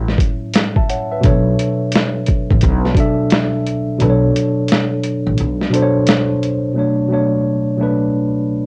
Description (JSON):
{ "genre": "lo-fi hip hop", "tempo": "87 BPM", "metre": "4/4", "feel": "swing 64% on 16ths", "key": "B minor", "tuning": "A4 = 440 Hz", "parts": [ { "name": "tine electric piano", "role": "accompaniment", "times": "0.0-8.7 s", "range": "A2 to A5", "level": "-18 LUFS", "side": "equal", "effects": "cassette tape, low-pass filter" }, { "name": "upright bass", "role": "bass", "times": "0.0-5.7 s", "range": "A1 to B1", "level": "-20 LUFS", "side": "equal", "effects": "transformer saturation" }, { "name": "lo-fi sampler-style drum kit", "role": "drums", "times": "0.1-6.6 s", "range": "hi-hat, kick drum, snare drum", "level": "-18 LUFS", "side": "equal", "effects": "cassette tape" } ], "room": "light reverb", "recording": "home recording on cassette", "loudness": "-16 LUFS", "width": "mono", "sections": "0.0-6.8 A section; 6.8-8.7 B section", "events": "kick muted 4.0-6.8", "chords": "0.0 F#m7; 1.2 Bm9" }